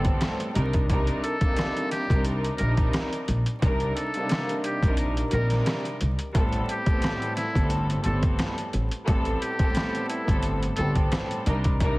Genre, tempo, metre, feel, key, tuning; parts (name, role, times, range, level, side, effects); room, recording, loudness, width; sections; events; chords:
hip hop, boom-bap hip-hop; 88 BPM; 4/4; swing 54% on 16ths; A minor; A4 = 440 Hz
trumpet with metal mute; melody; 0.0-10.9 s; E4 to Bb4; -32 LUFS; equal; high-pass filter, low-pass filter
warm studio string section; accompaniment; 0.0-12.0 s; A2 to Bb4; -28 LUFS; equal; cassette tape, high-pass filter, low-pass filter
upright bass; bass; 0.0-12.0 s; G1 to C2; -26 LUFS; equal
trip hop sampler-style drum kit; drums; 0.0-12.0 s; hi-hat, kick drum, rim click, snare drum; -26 LUFS; equal; overdrive
studio ambience; heavily compressed radio sound, multiband compression, vinyl crackle; -23 LUFS; side -21 dB against mid
0.0-12.0 A section
kick muted 5.0-6.3
0.0 Am9; 0.6 Cm9; 6.3 Am9; 11.5 Cm9